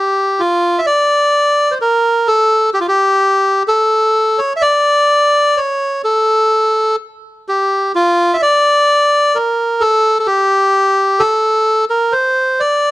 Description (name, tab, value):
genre	fado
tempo	64 BPM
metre	2/4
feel	rubato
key	D minor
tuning	A4 = 439 Hz
part	melodica	solo	0.0-12.9 s	F4 to E5	-11 LUFS	equal	none
room	studio reverb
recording	dry, close 1970s-style studio recording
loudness	-11 LUFS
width	side -16 dB against mid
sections	0.0-12.9 A section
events	none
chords	none